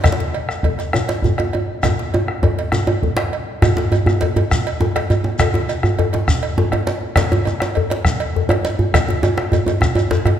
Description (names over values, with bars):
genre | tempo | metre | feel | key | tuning
west african traditional, West African drum ensemble | 135 BPM (dotted quarters) | 12/8 | straight | none | none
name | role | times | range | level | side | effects
bombo | percussion | 0.0-10.4 s | none | -21 LUFS | equal | none
cowbell | percussion | 0.0-10.4 s | none | -26 LUFS | right 6 dB | none
djembe | percussion | 0.1-10.4 s | none | -24 LUFS | left 6 dB | none
djembe | percussion | 0.1-10.4 s | none | -18 LUFS | right 1 dB | none
shekere | percussion | 0.1-10.2 s | none | -28 LUFS | left 3 dB | none
room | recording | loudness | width
wet scoring stage reverb, RT60 1.9 s | none | -16 LUFS | side -10 dB against mid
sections
0.0-3.6 A section; 3.6-10.4 B section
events
drum fill 1.8-3.6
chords
none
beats
| 0.05 0.50 0.94 1.39 | 1.84 2.28 2.73 3.18 | 3.62 4.07 4.51 4.95 | 5.40 5.84 6.29 6.73 | 7.17 7.61 8.05 8.50 | 8.94 9.38 9.82 10.26